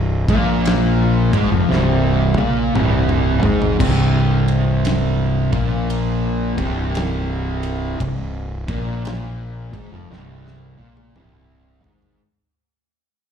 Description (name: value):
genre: stoner and doom metal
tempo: 57 BPM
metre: 4/4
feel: swing 65% on 8ths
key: unclear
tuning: A4 = 440 Hz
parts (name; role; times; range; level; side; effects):
- fuzz guitar; riff; 0.0-12.2 s; C2 to Bb3; -19 LUFS; equal; distortion
- fuzz fingered electric bass; bass; 0.0-12.2 s; C1 to Bb1; -21 LUFS; equal; overdrive, tube saturation
- big rock drum kit; drums; 0.3-12.2 s; crash cymbal, kick drum, ride cymbal, snare drum, toms; -24 LUFS; equal; none
room: small room reverb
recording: live gig heard through the venue's PA, club reverb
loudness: -16 LUFS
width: side -8 dB against mid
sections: 0.0-3.8 A section; 3.8-12.2 B section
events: drum fill 1.7-3.8, 10.1-12.2; fade-out 3.8-12.2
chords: none